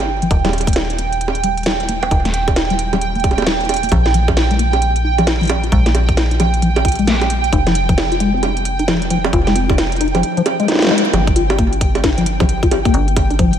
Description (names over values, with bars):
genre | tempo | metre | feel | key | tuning
IDM | 133 BPM | 4/4 | swing 62% on 16ths | G phrygian | A4 = 440 Hz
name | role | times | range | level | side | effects
metallic FM bass | bass | 0.0-13.6 s | Eb1 to Bb1 | -19 LUFS | equal | tube saturation
organic electronic drum kit | drums | 0.0-13.6 s | bongos, hi-hat, snare drum | -19 LUFS | right 2 dB | studio reverb, digital delay, slapback echo
pulsing gated texture | texture | 0.0-13.6 s | G5 | -21 LUFS | right 5 dB | chorus, built-in reverb
deep acid bass | arpeggios | 0.1-13.5 s | F3 to G4 | -20 LUFS | left 3 dB | analog chorus, ping-pong delay, slapback echo
electronic kick drum | drums | 0.3-13.5 s | none | -17 LUFS | equal | studio reverb
room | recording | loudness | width
moderate lush hall reverb, RT60 1.9 s, digital ambience | big arena sound | -13 LUFS | side -9 dB against mid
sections
0.0-11.1 A section; 11.1-13.6 B section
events
filter sweep on acid bass 0.0-11.1; band accent 10.9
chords
0.3 Eb; 3.9 Bb5; 7.5 F7(no3); 11.1 G7(no3)